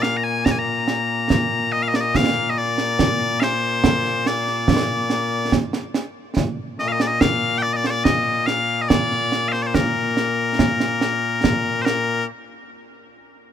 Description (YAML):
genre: scottish traditional, Scottish pipe music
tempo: 71 BPM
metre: 3/4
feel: straight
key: Bb major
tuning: A4 = 440 Hz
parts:
  - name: loud bright bagpipes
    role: melody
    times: 0.0-12.2 s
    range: Bb2 to Bb5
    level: -20 LUFS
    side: left 3 dB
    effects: none
  - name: concert snare drum and concert bass drum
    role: drums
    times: 0.0-12.3 s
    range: none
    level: -20 LUFS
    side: right 3 dB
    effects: none
room: little or no reverb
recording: minimal, uncompressed stereo recording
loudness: -18 LUFS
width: side -9 dB against mid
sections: 0.0-2.1 A section; 2.1-12.3 B section; 12.3-13.5 C section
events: none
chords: none